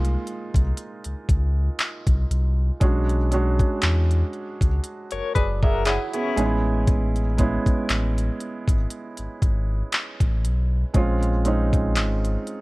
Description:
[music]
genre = contemporary R&B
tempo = 59 BPM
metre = 4/4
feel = swing 54% on 16ths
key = unclear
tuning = A4 = 441 Hz
[part]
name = felt-muted upright piano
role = accompaniment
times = 0.0-12.6 s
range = Ab3 to G#5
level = -27 LUFS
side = right 3 dB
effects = none
[part]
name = sub bass with octave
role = bass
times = 0.0-12.4 s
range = F#1 to E2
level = -22 LUFS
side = equal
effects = none
[part]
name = trap drum kit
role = drums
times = 0.0-12.6 s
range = handclaps, hi-hat, kick drum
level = -22 LUFS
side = equal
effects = none
[part]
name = direct-recorded clean electric guitar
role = arpeggios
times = 5.1-6.6 s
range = C#4 to C#5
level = -27 LUFS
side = left 6 dB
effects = tremolo, digital delay
[sound]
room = little or no reverb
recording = worn, warbling old tape, cassette tape, warbly pitch drift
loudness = -20 LUFS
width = side -21 dB against mid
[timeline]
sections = 0.0-12.6 A section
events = felt piano fill 4.8-6.9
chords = 0.0 Db69; 2.8 E13/B; 6.4 Amaj9; 10.9 Bbm9

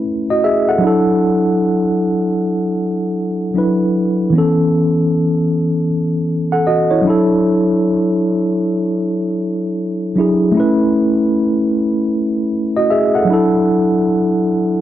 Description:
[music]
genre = hip hop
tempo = 77 BPM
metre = 4/4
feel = swing 64% on 16ths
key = unclear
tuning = A4 = 437 Hz
[part]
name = mellow tine electric piano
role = solo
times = 0.0-14.8 s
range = E3 to F#5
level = -13 LUFS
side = equal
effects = medium stereo tremolo, low-pass filter
[sound]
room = wet studio reverb, RT60 0.6 s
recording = dark, warm production, nothing above 7.8 kHz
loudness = -13 LUFS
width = side -12 dB against mid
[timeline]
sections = 0.0-14.8 A section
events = none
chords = 0.0 B9sus4; 0.8 E9sus4; 4.3 B9sus4; 7.1 E9sus4; 10.6 B9sus4; 13.3 E9sus4

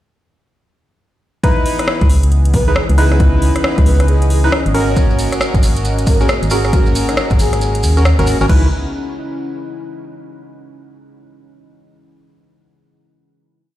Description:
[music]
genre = UK garage, two-step garage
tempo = 136 BPM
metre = 4/4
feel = swing 62% on 16ths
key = C# dorian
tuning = A4 = 440 Hz
[part]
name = warm analog pad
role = sustained chords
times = 1.4-8.7 s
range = E3 to D#5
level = -27 LUFS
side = left 2 dB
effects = chorus, sidechain pumping
[part]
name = percussive organ stab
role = stabs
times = 1.4-8.7 s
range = C#4 to B4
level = -20 LUFS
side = equal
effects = analog chorus, dub echo
[part]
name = electronic kick drum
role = drums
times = 1.4-8.6 s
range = none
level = -14 LUFS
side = equal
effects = overdrive
[part]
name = garage drum kit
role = drums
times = 1.4-8.6 s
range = crash cymbal, hi-hat, rim click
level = -22 LUFS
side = equal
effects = none
[part]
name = deep dark ambient pad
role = texture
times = 2.1-10.2 s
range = E3 to B5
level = -25 LUFS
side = equal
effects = chorus, built-in reverb, sidechain pumping
[part]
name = organ-like FM bass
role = bass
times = 2.0-8.7 s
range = G#1 to D#2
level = -13 LUFS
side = equal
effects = none
[part]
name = breathy flute-like synth lead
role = melody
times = 2.5-8.0 s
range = D#4 to C#5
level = -24 LUFS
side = right 1 dB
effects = lush chorus, dub echo
[part]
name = maracas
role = percussion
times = 5.0-8.5 s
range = none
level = -27 LUFS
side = right 4 dB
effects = none
[sound]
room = little or no reverb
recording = played on a big sound system in a bare room, stone room reverb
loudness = -12 LUFS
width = side -14 dB against mid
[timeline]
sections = 1.4-8.5 drop; 8.5-10.3 final chord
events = drop 1.4-8.5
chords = 1.4 C#m9; 4.7 G#9sus4; 8.5 C#m9

